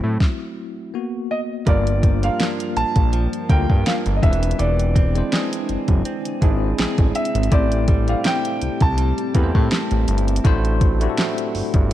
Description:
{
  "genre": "contemporary R&B",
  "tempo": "82 BPM",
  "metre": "4/4",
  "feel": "swing 54% on 16ths",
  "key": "G dorian",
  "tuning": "A4 = 440 Hz",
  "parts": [
    { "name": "bell-like tine electric piano", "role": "accompaniment", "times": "0.0-11.9 s", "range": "F#3 to D5", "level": "-25 LUFS", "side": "left 2 dB", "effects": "medium stereo tremolo" },
    { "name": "direct-recorded clean electric guitar", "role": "arpeggios", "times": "0.0-11.9 s", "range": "G2 to G#4", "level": "-31 LUFS", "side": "right 6 dB", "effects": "ping-pong delay" },
    { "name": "fat analog bass", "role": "bass", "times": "0.0-11.9 s", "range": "E1 to A2", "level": "-20 LUFS", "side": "equal", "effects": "none" },
    { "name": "smooth R&B drum kit", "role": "drums", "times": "0.2-11.9 s", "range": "hi-hat, kick drum, snare drum", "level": "-19 LUFS", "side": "equal", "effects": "none" },
    { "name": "warm grand piano", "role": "melody", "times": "1.3-11.9 s", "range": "D5 to A5", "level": "-25 LUFS", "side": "equal", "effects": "ping-pong delay" },
    { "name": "granular cloud pad", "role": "sustained chords", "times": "2.8-11.9 s", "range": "C4 to A5", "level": "-31 LUFS", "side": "left 1 dB", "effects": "built-in reverb" }
  ],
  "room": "digital ambience",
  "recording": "dark, warm production",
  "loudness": "-17 LUFS",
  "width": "side -13 dB against mid",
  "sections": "0.0-1.7 A section; 1.7-11.9 B section",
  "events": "tine electric piano solo 0.0-1.7; stop 0.2-1.7",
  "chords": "0.0 Am6; 0.9 Bmaj7(no3)/A#; 1.7 Gm7; 4.2 E7b13; 7.5 Am7; 10.4 D9/A"
}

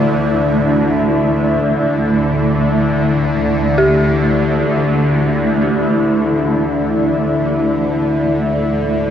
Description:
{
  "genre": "dark ambient drone",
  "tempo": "free time",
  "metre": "none",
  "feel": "none",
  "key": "unclear",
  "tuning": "A4 = 436 Hz",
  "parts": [
    { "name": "granular cloud pad", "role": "sustained chords", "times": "0.0-9.1 s", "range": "A3 to E5", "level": "-17 LUFS", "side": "equal", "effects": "built-in reverb" },
    { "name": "dark detuned synth bell", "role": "arpeggios", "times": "0.0-9.1 s", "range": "D4 to G4", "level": "-21 LUFS", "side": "equal", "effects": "chorus, tape echo" },
    { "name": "bowed-like drone", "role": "drone", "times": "0.0-9.1 s", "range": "D2 to D3", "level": "-16 LUFS", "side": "left 1 dB", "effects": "built-in reverb, phaser" },
    { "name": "bronze singing bowl", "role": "texture", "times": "0.0-9.1 s", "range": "none", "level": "barely audible", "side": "none", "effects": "none" }
  ],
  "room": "wet echo chamber reverb, RT60 2.5 s",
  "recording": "echo-heavy mix",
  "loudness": "-13 LUFS",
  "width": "side -9 dB against mid",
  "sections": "0.0-9.1 A section",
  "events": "none",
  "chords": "0.0 Dsus2"
}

